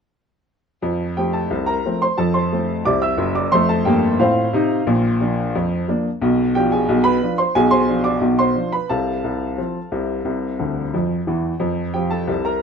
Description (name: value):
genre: ragtime piano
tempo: 89 BPM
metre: 2/4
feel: straight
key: F major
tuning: A4 = 440 Hz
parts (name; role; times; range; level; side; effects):
- clear upright piano; solo; 0.8-12.6 s; Gb1 to E6; -17 LUFS; equal; none
room: moderate club reverb, RT60 0.7 s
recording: minimal, uncompressed stereo recording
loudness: -17 LUFS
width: side -6 dB against mid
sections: 0.8-12.6 A section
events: upright piano fill 10.6-11.6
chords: 0.8 F; 3.5 F7; 4.9 Bb; 6.2 Bdim7; 8.9 F/C; 10.3 C; 11.6 F